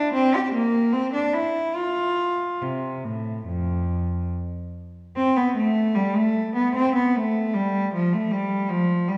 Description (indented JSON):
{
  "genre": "classical, baroque-style suite movement for unaccompanied cello",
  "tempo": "68-78 BPM",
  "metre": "4/4",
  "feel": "rubato",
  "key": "F major",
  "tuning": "A4 = 440 Hz",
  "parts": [
    { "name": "rich cello", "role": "solo", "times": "0.0-9.2 s", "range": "F2 to G4", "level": "-24 LUFS", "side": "equal", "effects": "none" }
  ],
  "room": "wet recital hall reverb, RT60 1.7 s",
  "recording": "heard from further back in the room",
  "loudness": "-24 LUFS",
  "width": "mono",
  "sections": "0.0-5.2 A section; 5.2-9.2 A section",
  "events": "none",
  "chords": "none",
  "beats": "0.14 0.92 | 1.76 2.62 3.45 4.30 | 5.16 5.96 6.75 7.53 | 8.31 9.07"
}